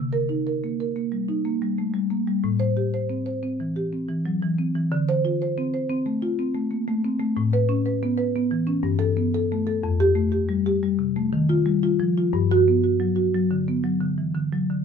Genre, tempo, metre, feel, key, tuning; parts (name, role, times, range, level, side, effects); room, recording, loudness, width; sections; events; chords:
classical, contemporary piece for solo marimba; 121 BPM; 5/4; rubato; A4 = 439 Hz
marimba with soft mallets; solo; 0.0-14.8 s; F2 to C5; -21 LUFS; left 1 dB
light reverb; close, detailed microphones; -21 LUFS; side -6 dB against mid
0.0-14.8 A section
0.0 Cm7; 2.5 Am7; 4.9 Dm7; 7.4 Aadd9; 8.8 Gadd9; 9.8 Fadd9; 11.3 D#add9; 12.3 Gmaj7